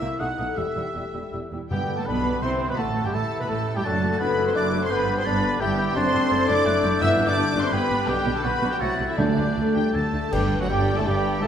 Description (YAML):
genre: classical, dramatic, fast romantic movement for symphony orchestra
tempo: 157-172 BPM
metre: 3/4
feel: rubato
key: G major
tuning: A4 = 440 Hz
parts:
  - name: clear symphonic violin section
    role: melody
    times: 0.0-11.5 s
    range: D5 to E6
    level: -31 LUFS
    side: left 1 dB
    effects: none
  - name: clear oboe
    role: second line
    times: 0.0-11.5 s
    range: D4 to F#5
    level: -34 LUFS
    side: right 1 dB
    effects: none
  - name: concert flute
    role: second line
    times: 0.0-11.5 s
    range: F#5 to A6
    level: -31 LUFS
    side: left 1 dB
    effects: none
  - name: rich symphonic violin section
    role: second line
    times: 0.0-11.5 s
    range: D4 to F#5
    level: -33 LUFS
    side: left 1 dB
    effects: none
  - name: rich symphonic viola section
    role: accompaniment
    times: 0.0-11.5 s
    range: F#3 to F#4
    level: -33 LUFS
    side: right 2 dB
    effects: none
  - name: warm bassoon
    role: accompaniment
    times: 0.0-11.5 s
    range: F#3 to G4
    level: -32 LUFS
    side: right 1 dB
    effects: none
  - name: warm French horn section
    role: sustained chords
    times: 0.0-11.5 s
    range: D3 to G4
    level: -31 LUFS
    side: left 4 dB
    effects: none
  - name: concert harp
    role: arpeggios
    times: 0.0-11.5 s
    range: E2 to D6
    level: -30 LUFS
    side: left 6 dB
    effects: none
  - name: rich symphonic cello section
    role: bass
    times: 0.0-11.5 s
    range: E2 to D3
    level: -30 LUFS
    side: right 2 dB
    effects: none
  - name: rich symphonic double bass section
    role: bass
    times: 0.0-11.5 s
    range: E1 to D2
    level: -31 LUFS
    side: right 2 dB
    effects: none
  - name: mellow trumpet section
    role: stabs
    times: 1.7-11.5 s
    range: D4 to E5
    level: -29 LUFS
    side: right 3 dB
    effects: none
  - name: timpani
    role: percussion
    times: 1.7-2.2, 7.0-9.7 s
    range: G2 to D3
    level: -29 LUFS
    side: right 2 dB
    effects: none
  - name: warm trombone section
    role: sustained chords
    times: 10.3-11.5 s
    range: F#2 to A2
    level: -31 LUFS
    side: right 3 dB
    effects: none
  - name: clash cymbals and concert bass drum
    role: percussion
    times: 10.3-11.0 s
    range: none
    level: -31 LUFS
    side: equal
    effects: none
room: wet scoring stage reverb, RT60 2.0 s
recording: none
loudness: -20 LUFS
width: side -8 dB against mid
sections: 0.0-1.7 A section; 1.7-10.3 B section; 10.3-11.5 C section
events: band accent 10.3-10.7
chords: 0.2 B7; 0.6 Em; 1.7 G; 2.8 Em; 3.8 D/F#; 4.9 G; 6.0 D7/F#; 7.0 G; 8.1 G/B; 8.8 Am/C; 9.2 Dsus4; 9.9 D; 10.3 G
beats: 0.20 | 0.57 0.95 1.33 | 1.71 2.07 2.43 | 2.78 3.14 3.49 | 3.85 4.20 4.56 | 4.91 5.26 5.61 | 5.96 6.31 6.66 | 7.01 7.37 7.73 | 8.09 8.45 8.81 | 9.19 9.57 9.94 | 10.32 10.69 11.06 | 11.43